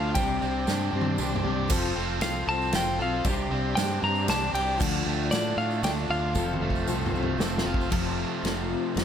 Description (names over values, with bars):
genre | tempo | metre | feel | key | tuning
folk rock and heartland rock | 116 BPM | 3/4 | straight | F major | A4 = 440 Hz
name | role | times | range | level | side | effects
clean lap steel guitar | melody | 0.0-7.4 s | D5 to Bb5 | -31 LUFS | equal | digital delay
picked steel-string acoustic guitar | accompaniment | 0.0-9.0 s | C3 to A4 | -32 LUFS | left 7 dB | none
bright tonewheel organ | sustained chords | 0.0-7.9 s | F4 to C6 | -39 LUFS | right 1 dB | chorus vibrato, fast rotary speaker
crunchy overdriven guitar | riff | 0.0-9.0 s | F2 to A4 | -31 LUFS | right 2 dB | none
fingered electric bass | bass | 0.0-9.0 s | F1 to A2 | -31 LUFS | equal | none
natural country drum kit | drums | 0.1-9.0 s | crash cymbal, kick drum, ride cymbal, snare drum, toms | -31 LUFS | right 1 dB | none
tambourine | percussion | 0.2-7.9 s | none | -42 LUFS | right 9 dB | none
room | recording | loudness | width
light reverb | none | -24 LUFS | side -8 dB against mid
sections
0.0-7.9 A section; 7.9-9.0 B section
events
drum fill 0.7-1.7, 6.4-7.9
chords
0.2 Csus2; 1.7 F; 3.2 Csus2; 4.8 Dm; 6.4 F